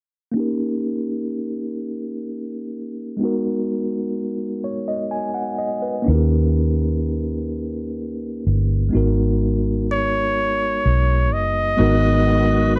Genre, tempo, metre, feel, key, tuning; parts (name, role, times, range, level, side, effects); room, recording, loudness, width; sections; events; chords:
slow six-eight R&B; 42 BPM (dotted quarters); 6/8; straight; G# minor; A4 = 441 Hz
mellow tine electric piano; accompaniment; 0.3-12.8 s; G#3 to G#5; -25 LUFS; equal; low-pass filter
vintage muted fingered electric bass; bass; 6.1-12.8 s; F#1 to D#2; -22 LUFS; equal
warm flugelhorn; melody; 9.9-12.8 s; B4 to D#5; -23 LUFS; equal; slapback echo
tonewheel organ; sustained chords; 11.8-12.8 s; D#3 to F#4; -32 LUFS; equal; chorus vibrato, slow rotary speaker
little or no reverb; dry, close 1970s-style studio recording; -21 LUFS; mono
0.3-11.8 A section; 11.8-12.8 B section
filter sweep on tine electric piano 0.3-11.8
0.3 D#7; 3.2 G#m9; 6.1 D#7; 8.9 G#m9